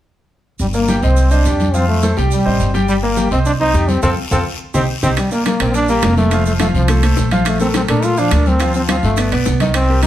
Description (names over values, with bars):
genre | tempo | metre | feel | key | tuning
latin, salsa | 210 BPM | 4/4 | straight | G minor | A4 = 440 Hz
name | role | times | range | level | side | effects
bright trombone | melody | 0.6-10.1 s | F3 to F4 | -18 LUFS | equal | none
upright bass | bass | 0.6-10.1 s | F1 to Bb2 | -16 LUFS | equal | none
congas | percussion | 0.6-10.1 s | none | -24 LUFS | left 2 dB | none
guiro | percussion | 0.6-10.1 s | none | -31 LUFS | left 5 dB | none
maracas | percussion | 0.6-10.1 s | none | -32 LUFS | right 5 dB | none
bright concert grand piano | accompaniment | 0.7-10.1 s | Eb3 to G5 | -19 LUFS | equal | none
bongos | percussion | 5.2-10.1 s | none | -27 LUFS | left 6 dB | none
timbales | percussion | 5.2-10.1 s | none | -24 LUFS | right 5 dB | none
room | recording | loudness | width
moderate studio reverb, RT60 0.9 s | heard from further back in the room | -13 LUFS | side -12 dB against mid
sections
0.6-5.2 A section; 5.2-10.1 B section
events
band accent 4.0-5.2; drum fill 4.5-5.2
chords
0.6 Gm; 1.2 Cm; 1.7 F; 2.3 Cm; 2.9 Gm; 3.5 Cm; 4.0 F; 4.6 Cm; 5.2 Gm7; 6.3 F; 7.5 Bbmaj7; 8.6 G9sus4; 9.2 G